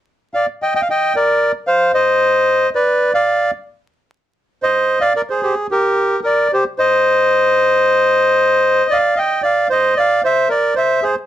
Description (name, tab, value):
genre	tango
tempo	112 BPM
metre	4/4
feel	rubato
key	C minor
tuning	A4 = 440 Hz
part	bandoneon	solo	0.3-11.2 s	G4 to G5	-13 LUFS	equal	none
room	light reverb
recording	dark, warm production, vinyl crackle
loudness	-13 LUFS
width	side -12 dB against mid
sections	0.0-5.9 A section; 5.9-11.3 B section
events	none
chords	0.0 N.C.; 0.6 Eb5; 1.7 N.C.; 2.7 Bdim; 3.8 C5; 7.0 N.C.; 8.1 Cm; 9.2 Cmadd9; 10.2 Abaug (rootless)